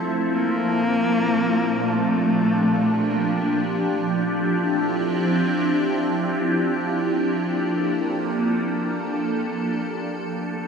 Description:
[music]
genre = ambient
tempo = free time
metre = none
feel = none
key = G dorian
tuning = A4 = 440 Hz
[part]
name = evolving wavetable pad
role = sustained chords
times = 0.0-10.7 s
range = Bb2 to A4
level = -21 LUFS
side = right 1 dB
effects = ensemble chorus, built-in reverb, phaser, shimmer reverb
[part]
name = dark cello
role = melody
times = 0.3-3.5 s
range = A3 to Bb3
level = -24 LUFS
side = left 1 dB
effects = shimmer reverb, ping-pong delay
[sound]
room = wet huge ambient reverb, RT60 7.8 s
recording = dark, warm production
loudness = -20 LUFS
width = side -6 dB against mid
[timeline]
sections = 0.0-10.7 A section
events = none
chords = 0.3 Gm9; 3.5 Dm11; 6.7 Gm9; 9.9 Fmaj7

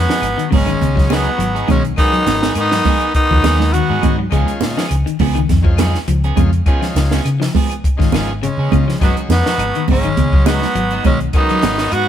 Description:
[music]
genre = afrobeat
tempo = 103 BPM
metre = 4/4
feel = swing 53% on 16ths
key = G# dorian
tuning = A4 = 438 Hz
[part]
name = growling tenor saxophone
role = melody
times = 0.0-4.2, 8.4-12.1 s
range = B3 to F#4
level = -18 LUFS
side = right 1 dB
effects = none
[part]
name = brilliant trumpet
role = second line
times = 0.0-4.2, 8.4-12.1 s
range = F#3 to B3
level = -27 LUFS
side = right 5 dB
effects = none
[part]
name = raspy baritone saxophone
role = second line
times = 0.0-4.2, 8.4-12.1 s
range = B2 to F#3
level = -28 LUFS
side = left 6 dB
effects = none
[part]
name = combo organ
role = accompaniment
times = 0.0-11.9 s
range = D#3 to F#4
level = -28 LUFS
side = left 2 dB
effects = none
[part]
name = fingered electric bass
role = bass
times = 0.0-12.1 s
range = G#1 to C#3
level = -18 LUFS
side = left 1 dB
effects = none
[part]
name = electric guitar at the edge of break-up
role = arpeggios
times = 0.1-11.7 s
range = C#3 to G#3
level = -22 LUFS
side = left 6 dB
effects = spring reverb
[part]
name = electric guitar at the edge of break-up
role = stabs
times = 0.1-12.0 s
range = E#3 to G#4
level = -26 LUFS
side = right 5 dB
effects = none
[part]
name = compact cocktail drum kit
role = drums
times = 0.1-12.1 s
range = hi-hat, kick drum, snare drum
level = -18 LUFS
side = equal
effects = none
[part]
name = congas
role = percussion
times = 0.1-11.8 s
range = none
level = -21 LUFS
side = right 8 dB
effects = none
[part]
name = claves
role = percussion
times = 0.2-12.1 s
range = none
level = -36 LUFS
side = left 12 dB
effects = none
[sound]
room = light reverb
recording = band playing live in one room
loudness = -13 LUFS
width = side -10 dB against mid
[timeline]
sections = 0.0-12.1 A section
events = none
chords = 0.0 G#m7; 4.3 C#7; 9.0 G#m7

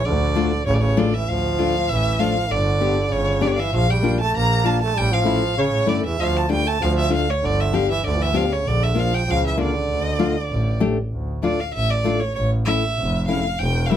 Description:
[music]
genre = klezmer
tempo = 97 BPM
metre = 2/4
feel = straight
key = D harmonic minor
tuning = A4 = 440 Hz
[part]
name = clear violin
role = melody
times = 0.0-14.0 s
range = C#5 to Bb5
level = -23 LUFS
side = right 1 dB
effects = none
[part]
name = growling trombone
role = second line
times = 0.0-10.8 s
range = C#3 to Bb3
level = -26 LUFS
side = right 5 dB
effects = none
[part]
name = rich double bass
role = bass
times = 0.1-14.0 s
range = E1 to C#3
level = -22 LUFS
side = equal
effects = none
[part]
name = nylon-string guitar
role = accompaniment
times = 0.4-14.0 s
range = G3 to G4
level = -22 LUFS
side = left 5 dB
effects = none
[sound]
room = light reverb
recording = close, detailed microphones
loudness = -18 LUFS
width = side -10 dB against mid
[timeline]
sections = 0.0-1.3 A section; 1.3-11.1 B section; 11.1-14.0 C section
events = violin solo 11.1-14.0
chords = 0.1 Dm; 2.5 G; 3.7 Bb; 5.0 A; 6.2 Dm; 7.4 G; 8.7 Bb; 9.9 Dm; 12.4 A

